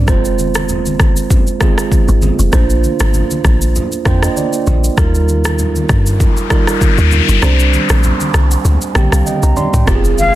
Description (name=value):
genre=afrobeats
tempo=98 BPM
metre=4/4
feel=swing 55% on 16ths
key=unclear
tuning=A4 = 436 Hz
part: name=mellow tine electric piano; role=accompaniment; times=0.0-10.4 s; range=D3 to C6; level=-18 LUFS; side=right 5 dB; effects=none
part: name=deep log drum bass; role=bass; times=0.0-10.4 s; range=F1 to G2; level=-13 LUFS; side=equal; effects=none
part: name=afro-pop drum kit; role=drums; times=0.1-10.3 s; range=kick drum, rim click, shaker, toms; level=-15 LUFS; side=equal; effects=soft clipping on snare
part: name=congas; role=percussion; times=0.1-10.3 s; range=none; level=-23 LUFS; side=left 1 dB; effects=none
part: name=noise sweep and impact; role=sound effects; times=5.8-10.4 s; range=none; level=-20 LUFS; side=left 4 dB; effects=none
part: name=airy breathy pad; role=sustained chords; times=9.9-10.4 s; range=C3 to Ab4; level=-22 LUFS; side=right 1 dB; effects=chorus
part: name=jazz flute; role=melody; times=10.2-10.3 s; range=F5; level=-10 LUFS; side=left 2 dB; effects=none
room=digital ambience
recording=dense, heavily limited modern master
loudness=-10 LUFS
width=side -14 dB against mid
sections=0.0-9.9 A section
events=tine electric piano fill 3.8-5.0, 8.7-9.9; noise sweep 5.8-9.9; kick muted 7.4-9.9; impact 9.9-10.4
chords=0.1 Fm; 2.5 Bbadd9; 5.0 Ebadd9; 7.4 Csus2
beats=| 0.08 0.69 1.30 1.92 | 2.53 3.14 3.75 4.36 | 4.98 5.59 6.20 6.81 | 7.43 8.04 8.65 9.26 | 9.88